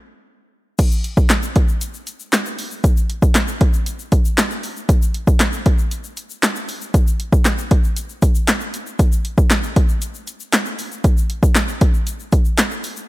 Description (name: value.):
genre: pop.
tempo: 117 BPM.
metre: 4/4.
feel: straight.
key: none.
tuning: none.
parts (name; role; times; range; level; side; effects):
punchy analog drum machine; drums; 0.8-13.0 s; crash cymbal, handclaps, hi-hat, kick drum, snare drum; -15 LUFS; equal; overdrive.
egg shaker; percussion; 0.8-13.1 s; none; -33 LUFS; left 8 dB; none.
room: digital ambience.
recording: none.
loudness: -15 LUFS.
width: side -18 dB against mid.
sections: 0.8-13.1 A section.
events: break 0.0-0.8.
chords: none.